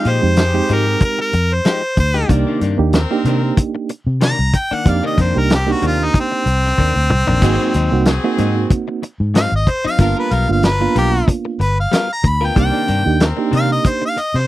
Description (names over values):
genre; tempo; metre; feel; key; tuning
straight-eighth soul blues; 94 BPM; 4/4; swing 54% on 16ths; C minor; A4 = 439 Hz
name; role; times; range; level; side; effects
bright harmonica; melody; 0.0-14.5 s; C4 to B5; -19 LUFS; equal; overdrive
reed electric piano; accompaniment; 0.0-14.2 s; Ab3 to G4; -19 LUFS; right 6 dB; fast tremolo
clear horn section; sustained chords; 0.0-13.8 s; Ab3 to A#5; -27 LUFS; left 2 dB; none
direct-recorded clean electric guitar; stabs; 0.0-14.2 s; Ab2 to A#4; -23 LUFS; left 7 dB; none
warm soul drum kit; drums; 0.0-14.4 s; crash cymbal, hi-hat, kick drum, snare drum, toms; -16 LUFS; equal; none
vintage muted fingered electric bass; bass; 0.1-14.5 s; G1 to C3; -17 LUFS; equal; none
room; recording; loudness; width
little or no reverb; dry, close 1970s-style studio recording; -13 LUFS; side -15 dB against mid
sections
0.0-14.5 A section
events
harmonica solo 0.0-14.5; drum fill 6.8-7.4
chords
0.0 Fm9; 2.3 Cm9; 7.4 Ab7; 10.0 G7#9; 12.6 Cm9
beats
0.37 1.01 1.65 | 2.29 2.94 3.58 4.22 | 4.86 5.50 6.14 6.79 | 7.43 8.07 8.71 9.35 | 9.99 10.63 11.28 11.92 | 12.56 13.20 13.84